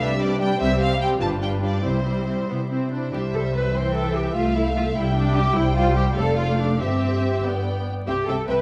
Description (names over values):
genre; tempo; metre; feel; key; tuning
quick classical-period movement for string orchestra; 90-102 BPM (dotted quarters); 6/8; rubato; C major; A4 = 439 Hz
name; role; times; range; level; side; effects
rich studio violin section; melody; 0.0-8.6 s; C5 to A5; -32 LUFS; equal; none
clear studio violin section; second line; 0.0-8.6 s; E4 to E5; -33 LUFS; equal; none
warm studio viola section; accompaniment; 0.0-8.6 s; E3 to D4; -28 LUFS; equal; none
clear symphonic double bass section; bass; 0.0-8.6 s; F1 to C2; -27 LUFS; equal; none
rich studio cello section; bass; 0.0-8.6 s; G2 to C5; -27 LUFS; equal; none
room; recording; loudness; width
moderate scoring stage reverb, RT60 1.5 s; dark, warm production, vinyl crackle; -22 LUFS; mono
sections
0.0-3.1 A section; 3.1-8.6 A section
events
none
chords
0.0 G/C; 0.6 C5; 1.2 G7; 1.8 C; 4.4 Fmaj7/C; 5.0 G5/C; 5.6 C; 6.2 Dm/F; 6.8 C/G; 7.4 G; 8.1 C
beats
0.00 | 0.59 1.20 | 1.83 2.49 | 3.13 3.75 | 4.36 4.96 | 5.55 6.16 | 6.81 7.45 | 8.07